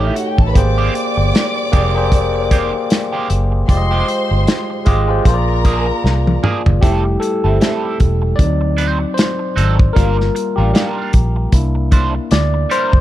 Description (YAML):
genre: lush 1970s-style soul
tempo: 76 BPM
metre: 4/4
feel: swing 58% on 16ths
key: F major from 6.8 s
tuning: A4 = 440 Hz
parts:
  - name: warm studio violin section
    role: second line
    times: 0.0-6.4 s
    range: E4 to D6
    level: -22 LUFS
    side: equal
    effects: none
  - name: overdriven tine electric piano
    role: accompaniment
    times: 0.0-13.0 s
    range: F#3 to Eb5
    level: -19 LUFS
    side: left 2 dB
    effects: phaser
  - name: electric guitar at the edge of break-up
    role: riff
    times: 0.0-13.0 s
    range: D#3 to C5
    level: -24 LUFS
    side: right 5 dB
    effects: wah
  - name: vintage muted fingered electric bass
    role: bass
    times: 0.0-13.0 s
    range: E1 to D2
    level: -16 LUFS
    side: equal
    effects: none
  - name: warm soul drum kit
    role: drums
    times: 0.2-13.0 s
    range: hi-hat, kick drum, snare drum, toms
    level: -14 LUFS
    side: equal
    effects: none
room: studio reverb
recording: dark, warm production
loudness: -13 LUFS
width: side -13 dB against mid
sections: 0.0-6.8 A section; 6.8-13.0 B section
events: drum fill 6.0-6.8; tine electric piano solo 6.8-13.0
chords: 0.0 A7#11; 0.6 Abmaj9; 3.7 Fm9; 5.3 Bb7; 6.8 Fmaj9; 8.4 D7b9; 10.0 Gm7; 11.5 C9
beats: | 0.56 1.34 2.13 2.91 | 3.69 4.48 5.26 6.04 | 6.83 7.61 8.39 9.18 | 9.96 10.75 11.54 12.32